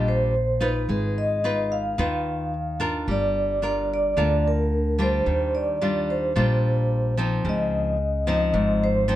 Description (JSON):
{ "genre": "bossa nova", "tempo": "110 BPM", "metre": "4/4", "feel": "straight", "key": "Eb major", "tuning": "A4 = 440 Hz", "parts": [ { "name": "vibraphone with medium mallets", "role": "melody", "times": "0.0-9.2 s", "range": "Bb4 to F5", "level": "-24 LUFS", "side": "equal", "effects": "none" }, { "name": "nylon-string guitar", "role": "accompaniment", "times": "0.0-9.2 s", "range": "Ab2 to Cb5", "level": "-26 LUFS", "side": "left 1 dB", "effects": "none" }, { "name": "upright bass", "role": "bass", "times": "0.0-9.2 s", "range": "G1 to Eb2", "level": "-26 LUFS", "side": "equal", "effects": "none" } ], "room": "light reverb", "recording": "dark, warm production", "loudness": "-21 LUFS", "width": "side -13 dB against mid", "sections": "0.0-9.2 A section", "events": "none", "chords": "0.0 Ebmaj9; 0.9 Abm6; 3.1 Gm7; 5.3 Ebmaj9; 7.5 Dbmaj9" }